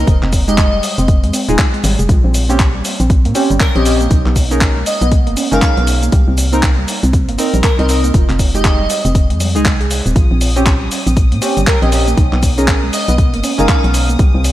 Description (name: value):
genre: deep house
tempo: 119 BPM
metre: 4/4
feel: swing 61% on 16ths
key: Bb dorian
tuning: A4 = 439 Hz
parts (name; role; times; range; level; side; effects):
- warbly dusty pluck; arpeggios; 0.0-14.4 s; G3 to Ab4; -21 LUFS; right 2 dB; chorus, sidechain pumping, tape echo
- organ-like FM bass; bass; 0.0-14.5 s; Eb1 to Bb2; -15 LUFS; equal; sidechain pumping
- dusty soul sampler-style drum kit; drums; 0.1-14.5 s; cabasa, handclaps, hi-hat; -20 LUFS; left 1 dB; studio reverb
- electronic kick drum; drums; 0.1-14.3 s; none; -13 LUFS; equal; studio reverb
- airy dreamy lead; melody; 0.5-13.9 s; Bb4 to F5; -22 LUFS; equal; chorus, tape echo
- deep mellow chord stab; stabs; 0.5-14.2 s; Ab3 to A#4; -20 LUFS; equal; chorus, sidechain pumping, tape echo
- warm symphonic violin section; texture; 10.2-14.5 s; Eb6; -29 LUFS; left 3 dB; sidechain pumping
room: light reverb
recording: none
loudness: -11 LUFS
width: side -14 dB against mid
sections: 0.0-14.5 A section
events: none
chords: 0.1 Fm9; 2.1 Bbm69; 4.1 Bmaj13; 6.1 Cm7; 8.1 Fm9; 10.2 Bbm69; 12.2 Bmaj13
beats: | 0.07 0.58 1.08 1.59 | 2.09 2.60 3.10 3.60 | 4.11 4.61 5.12 5.62 | 6.12 6.63 7.13 7.64 | 8.14 8.65 9.15 9.65 | 10.16 10.66 11.17 11.67 | 12.18 12.68 13.18 13.69 | 14.19